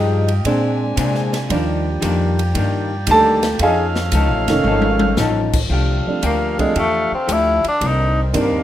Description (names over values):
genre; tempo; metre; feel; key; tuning
jazz, big band swing; 114 BPM; 4/4; swing 69% on 8ths; unclear; A4 = 441 Hz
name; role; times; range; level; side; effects
dark grand piano; accompaniment; 0.0-8.6 s; Eb3 to A5; -19 LUFS; right 2 dB; none
vintage hollow-body jazz guitar; accompaniment; 0.0-8.6 s; Bb2 to A4; -23 LUFS; left 4 dB; none
warm saxophone section; sustained chords; 0.0-8.6 s; D3 to Ab5; -26 LUFS; right 1 dB; none
upright bass; bass; 0.0-8.6 s; F1 to C3; -20 LUFS; equal; none
swinging big-band drum kit; drums; 0.3-8.5 s; crash cymbal, hi-hat, kick drum, ride cymbal, snare drum, toms; -26 LUFS; left 1 dB; none
breathy tenor saxophone; melody; 6.3-8.6 s; G3 to E4; -18 LUFS; left 1 dB; none
room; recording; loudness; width
moderate small room reverb, RT60 0.5 s; rough home demo mix; -15 LUFS; side -12 dB against mid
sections
0.0-5.7 A section; 5.7-8.6 A section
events
grand piano solo 0.0-5.7; drum fill 4.7-5.2; tenor saxophone solo 5.7-8.6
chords
0.4 Bb9; 1.5 Ebmaj7; 3.6 F7alt; 5.7 F69; 7.8 Cm9